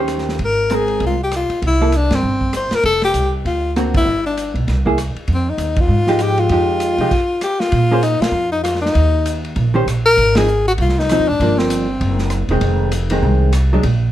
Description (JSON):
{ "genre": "jazz, small-group swing and bop", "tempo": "196 BPM", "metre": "4/4", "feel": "swing 60% on 8ths", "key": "F minor", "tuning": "A4 = 440 Hz", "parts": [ { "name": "bright tenor saxophone", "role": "melody", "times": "0.0-12.5 s", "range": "C4 to C5", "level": "-17 LUFS", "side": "left 2 dB", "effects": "plate reverb" }, { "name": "vintage hollow-body jazz guitar", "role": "accompaniment", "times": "0.0-13.8 s", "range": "D3 to C5", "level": "-18 LUFS", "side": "right 1 dB", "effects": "none" }, { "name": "upright bass", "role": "bass", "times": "0.0-14.1 s", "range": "Fb1 to C3", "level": "-18 LUFS", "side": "right 1 dB", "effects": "none" }, { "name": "vintage drum kit", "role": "drums", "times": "0.1-13.9 s", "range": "crash cymbal, hi-hat, kick drum, ride cymbal, rim click, snare drum", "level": "-24 LUFS", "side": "equal", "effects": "none" } ], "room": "light reverb", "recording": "close, detailed microphones", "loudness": "-14 LUFS", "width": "side -13 dB against mid", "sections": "0.0-7.7 A section; 7.7-14.1 B section", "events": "band accent 2.1, 3.9, 5.7, 8.2, 10.3", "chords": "0.4 Abadd9; 1.6 C; 2.8 Fsus2; 3.4 D7alt; 4.1 G5; 4.7 C7b13; 5.3 Fm9; 7.7 Bb5; 8.9 Eb5; 10.2 Ab6; 11.4 Gm7; 12.0 Ab7b13; 12.6 Fm7" }